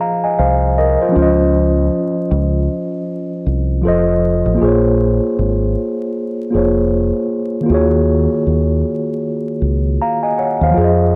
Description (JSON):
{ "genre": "lo-fi hip hop", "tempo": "78 BPM", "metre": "4/4", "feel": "swing 58% on 16ths", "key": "unclear", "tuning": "A4 = 440 Hz", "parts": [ { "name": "mellow tine electric piano", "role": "accompaniment", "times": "0.0-11.2 s", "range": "Eb3 to Bb5", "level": "-17 LUFS", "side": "equal", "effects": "low-pass filter" }, { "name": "deep dub fingered electric bass", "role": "bass", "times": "0.4-11.2 s", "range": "F1 to F2", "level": "-19 LUFS", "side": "equal", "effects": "none" } ], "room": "moderate small room reverb, RT60 0.5 s", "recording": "worn, warbling old tape, cassette tape, vinyl crackle, warbly pitch drift", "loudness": "-16 LUFS", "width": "mono", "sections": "0.0-11.2 A section", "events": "none", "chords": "0.0 Fm7; 1.1 Dbmaj7; 3.8 F7; 4.6 Bbm7; 7.7 Ebm11" }